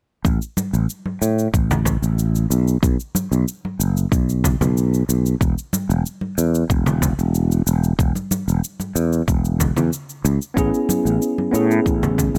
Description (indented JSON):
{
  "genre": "sunset chillout",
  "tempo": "93 BPM",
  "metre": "4/4",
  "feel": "straight",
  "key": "unclear",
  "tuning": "A4 = 441 Hz",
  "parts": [
    { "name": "sustaining fretless electric bass", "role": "bass", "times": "0.2-12.4 s", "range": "E1 to A2", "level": "-20 LUFS", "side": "equal", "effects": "none" },
    { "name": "electronic kick drum", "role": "drums", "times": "0.2-12.3 s", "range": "none", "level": "-23 LUFS", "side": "equal", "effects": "none" },
    { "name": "shaker", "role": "drums", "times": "0.3-12.4 s", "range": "none", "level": "-30 LUFS", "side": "equal", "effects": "none" },
    { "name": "congas", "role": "percussion", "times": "0.6-12.3 s", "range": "none", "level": "-27 LUFS", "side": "equal", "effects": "none" },
    { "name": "mellow tine electric piano", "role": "accompaniment", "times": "10.5-12.4 s", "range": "B3 to G#4", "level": "-22 LUFS", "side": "equal", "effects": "overdrive, delay" }
  ],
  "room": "digital ambience",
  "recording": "none",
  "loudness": "-20 LUFS",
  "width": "mono",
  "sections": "0.2-12.4 A section",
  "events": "none",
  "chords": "0.2 N.C.; 2.5 B5; 5.4 N.C.; 10.6 Amaj7"
}